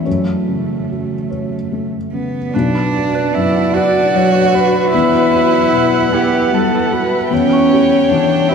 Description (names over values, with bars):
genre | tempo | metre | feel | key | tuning
neoclassical piano and strings | 50 BPM (dotted quarters) | 6/8 | rubato | B minor | A4 = 440 Hz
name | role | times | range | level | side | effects
warm cello | second line | 0.0-8.5 s | A3 to F#4 | -16 LUFS | right 3 dB | none
felt-muted upright piano | accompaniment | 0.0-8.5 s | B1 to F#5 | -17 LUFS | left 2 dB | none
warm viola | accompaniment | 2.5-8.5 s | D5 to G5 | -22 LUFS | right 4 dB | none
concert harp | arpeggios | 2.5-8.5 s | D4 to C#6 | -24 LUFS | right 2 dB | none
dark violin | melody | 3.8-8.5 s | G4 to D5 | -16 LUFS | left 4 dB | none
room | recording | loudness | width
wet cathedral reverb, RT60 7.5 s | recorded in a church or concert hall | -12 LUFS | side -6 dB against mid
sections
0.0-2.5 A section; 2.5-8.5 A section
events
none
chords
0.1 F#m; 2.5 Bm; 4.9 Emadd9; 7.3 C#dim/E